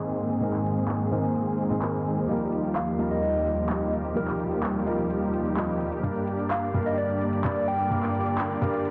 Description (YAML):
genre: EDM, festival progressive house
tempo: 128 BPM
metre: 4/4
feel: straight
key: Eb major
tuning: A4 = 440 Hz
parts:
  - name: felt-muted upright piano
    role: accompaniment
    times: 0.0-8.9 s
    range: G2 to Eb5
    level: -32 LUFS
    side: equal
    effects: delay
  - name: rich symphonic string section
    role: sustained chords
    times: 0.0-8.9 s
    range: Eb2 to D5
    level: -34 LUFS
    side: equal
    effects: none
  - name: supersaw chords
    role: riff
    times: 0.0-8.9 s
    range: Eb3 to Ab4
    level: -31 LUFS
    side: equal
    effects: low-pass filter, delay
  - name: big-room dance drum kit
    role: drums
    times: 0.1-8.9 s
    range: handclaps, hi-hat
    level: -39 LUFS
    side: equal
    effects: low-pass filter on hats, low-pass filter on cymbals, low-pass filter on snare
  - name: soft struck synth lead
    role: melody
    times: 2.8-8.9 s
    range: Bb4 to G5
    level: -32 LUFS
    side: equal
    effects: chorus, delay
room: light reverb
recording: dense, heavily limited modern master, low-pass filter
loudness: -27 LUFS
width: mono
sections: 0.0-8.9 A section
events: filter sweep on drum 0.0-8.9; filter sweep on supersaw synth 0.0-8.9; filter sweep 0.0-8.9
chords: 0.0 Abadd9; 2.3 Ebadd9; 6.0 Gm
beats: | 0.41 0.88 1.35 1.82 | 2.29 2.76 3.23 3.70 | 4.17 4.63 5.10 5.57 | 6.04 6.51 6.98 7.45 | 7.92 8.38 8.85